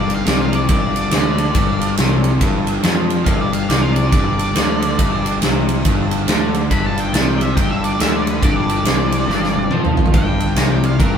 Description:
blues rock power trio and southern rock; 140 BPM; 4/4; swing 62% on 8ths; A4 = 440 Hz
octave-fuzz lead guitar; melody; 0.0-11.2 s; G4 to B5; -23 LUFS; equal; distortion
crunchy overdriven guitar; riff; 0.0-11.2 s; G2 to F3; -20 LUFS; left 2 dB
fuzz fingered electric bass; bass; 0.0-11.2 s; G1 to F2; -21 LUFS; equal; overdrive
huge arena drum kit; drums; 0.1-11.1 s; kick drum, ride cymbal, snare drum, toms; -17 LUFS; equal
moderate studio reverb, RT60 0.6 s; band playing live in one room; -14 LUFS; side -8 dB against mid
0.0-11.2 A section
drum fill 9.3-10.1
0.0 G5
0.26 0.69 1.12 | 1.55 1.98 2.41 2.84 | 3.27 3.70 4.13 4.56 | 4.99 5.42 5.85 6.28 | 6.71 7.14 7.57 8.00 | 8.43 8.85 9.28 9.71 | 10.13 10.56 10.99

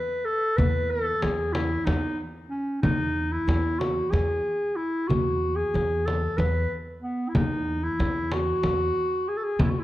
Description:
Turkish makam ensemble; 186 BPM (eighths); 7/8; straight; E makam rast; A4 = 439 Hz
mellow clarinet; melody; 0.0-9.8 s; B3 to B4; -26 LUFS; equal
upright bass; bass; 0.6-9.8 s; E2; -28 LUFS; equal
frame drum; percussion; 0.6-9.7 s; -28 LUFS; left 1 dB
light reverb; dark, warm production; -23 LUFS; side -15 dB against mid
0.0-9.8 A section
0.26 | 0.58 0.91 1.23 1.55 1.88 2.20 2.52 | 2.85 3.17 3.49 3.81 4.14 4.46 4.78 | 5.10 5.42 5.75 6.07 6.39 6.71 7.03 | 7.36 7.68 8.00 8.32 8.64 8.96 9.28 | 9.60

